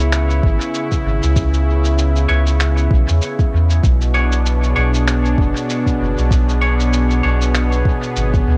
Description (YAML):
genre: ambient dub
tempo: 97 BPM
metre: 4/4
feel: swing 57% on 16ths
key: B dorian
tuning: A4 = 439 Hz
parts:
  - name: warm analog pad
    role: sustained chords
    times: 0.0-8.6 s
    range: B2 to C#5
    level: -23 LUFS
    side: equal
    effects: chorus, cassette tape
  - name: soft dub sub bass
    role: bass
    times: 0.0-8.6 s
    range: F#1 to E2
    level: -18 LUFS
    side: equal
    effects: none
  - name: electronic finger snaps and cabasa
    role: drums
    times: 0.1-8.4 s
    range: none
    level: -29 LUFS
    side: equal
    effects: cassette tape, dub echo
  - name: electronic kick drum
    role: drums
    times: 0.4-8.4 s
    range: none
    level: -19 LUFS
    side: equal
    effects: overdrive, cassette tape
  - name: semi-hollow electric guitar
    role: stabs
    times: 2.3-7.4 s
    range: D4 to C#5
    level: -28 LUFS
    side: equal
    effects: spring reverb, cassette tape, dub echo
room: little or no reverb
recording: home recording on cassette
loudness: -16 LUFS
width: mono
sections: 0.0-8.6 A section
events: none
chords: 0.0 C#m7; 3.8 Bm69